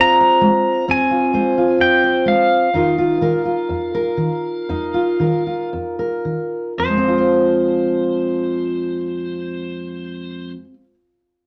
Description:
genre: folk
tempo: 56-66 BPM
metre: 4/4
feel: straight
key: F minor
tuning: A4 = 441 Hz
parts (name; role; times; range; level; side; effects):
- pedal steel guitar; melody; 0.0-10.5 s; C5 to Bb5; -21 LUFS; equal; none
- fingerpicked steel-string acoustic guitar; accompaniment; 0.0-10.9 s; F2 to C5; -20 LUFS; equal; none
room: wet small room reverb, RT60 0.5 s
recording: none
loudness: -18 LUFS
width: mono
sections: 0.0-6.8 A section; 6.8-11.1 B section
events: slowing down 0.0-6.8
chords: 0.0 Fm; 2.7 Bbsus4/F; 6.8 Fm

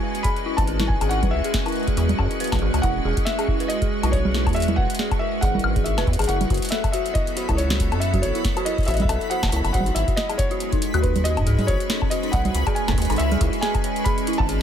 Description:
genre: IDM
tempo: 139 BPM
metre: 4/4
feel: swing 56% on 16ths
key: F# dorian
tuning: A4 = 440 Hz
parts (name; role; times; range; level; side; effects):
- felt-muted upright piano; melody; 0.0-14.6 s; B4 to B5; -28 LUFS; left 1 dB; ping-pong delay
- icy glass pad; sustained chords; 0.0-14.6 s; F#3 to B4; -27 LUFS; right 1 dB; chorus, built-in reverb, vintage 12-bit sampler grit, sidechain pumping
- dark detuned synth bell; arpeggios; 0.0-14.6 s; D#4 to C#5; -29 LUFS; left 1 dB; chorus, phaser, ping-pong delay
- booming analog drum machine; drums; 0.1-14.6 s; congas, hi-hat, snare drum, woodblock; -28 LUFS; equal; none
- electronic kick drum; drums; 0.2-14.5 s; none; -25 LUFS; equal; none
- deep acid bass; bass; 0.6-14.6 s; E1 to G#2; -23 LUFS; equal; none
- backwards swelling texture; texture; 6.7-14.6 s; B5; -36 LUFS; left 1 dB; built-in reverb, sidechain pumping
room: little or no reverb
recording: none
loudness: -19 LUFS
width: side -9 dB against mid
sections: 0.0-6.3 A section; 6.3-14.6 A section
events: drum fill 6.1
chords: 0.0 C#m7; 2.8 E; 6.3 F#m7; 9.7 G#m7; 13.2 C#m7

